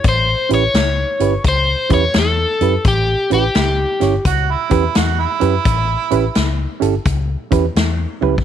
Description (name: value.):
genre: electric blues shuffle.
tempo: 86 BPM.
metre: 4/4.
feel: swing 66% on 8ths.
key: A mixolydian.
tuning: A4 = 441 Hz.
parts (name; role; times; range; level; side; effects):
crunchy overdriven guitar; melody; 0.0-4.2 s; G4 to C#5; -17 LUFS; left 2 dB; none.
vintage muted fingered electric bass; bass; 0.0-8.4 s; G1 to F#2; -19 LUFS; left 2 dB; none.
swinging big-band drum kit; drums; 0.0-8.4 s; hi-hat, kick drum, snare drum, toms; -19 LUFS; left 2 dB; none.
reed electric piano; accompaniment; 0.5-8.3 s; C#4 to C#5; -19 LUFS; right 12 dB; overdrive.
mellow harmonica; second line; 4.3-6.6 s; E4 to F#4; -20 LUFS; right 9 dB; overdrive.
room: studio reverb.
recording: 1960s-style stereo.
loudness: -14 LUFS.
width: side -9 dB against mid.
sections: 0.0-8.4 A section.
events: drum fill 8.1-8.4.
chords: 0.0 A7.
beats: | 0.05 0.75 1.45 2.15 | 2.86 3.56 4.26 4.96 | 5.66 6.37 7.07 7.77.